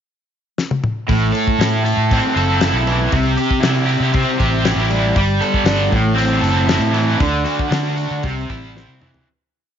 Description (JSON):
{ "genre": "psychedelic rock", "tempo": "117 BPM", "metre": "4/4", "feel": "straight", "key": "A dorian", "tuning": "A4 = 439 Hz", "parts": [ { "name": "damped 70s drum kit", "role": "drums", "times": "0.6-9.3 s", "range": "hi-hat, kick drum, snare drum, toms", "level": "-21 LUFS", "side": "left 2 dB", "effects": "none" }, { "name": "cranked stack guitar", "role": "riff", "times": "1.1-9.3 s", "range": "A2 to A4", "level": "-17 LUFS", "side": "right 1 dB", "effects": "overdrive, harmonic tremolo" }, { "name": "fingered electric bass", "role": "bass", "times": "1.1-9.2 s", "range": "F#1 to D3", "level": "-19 LUFS", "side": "equal", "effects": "none" } ], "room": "light reverb, small room ambience", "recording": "1960s-style stereo, nothing above 7.5 kHz", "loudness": "-14 LUFS", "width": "side -8 dB against mid", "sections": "0.0-1.1 pickup bar; 1.1-9.3 verse", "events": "drum fill 0.6-1.1, 8.8-9.3; fade-out 7.2-9.3", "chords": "0.0 N.C.; 1.1 Am; 3.1 C; 5.2 Gsus2; 5.9 Am; 7.2 D; 8.2 C" }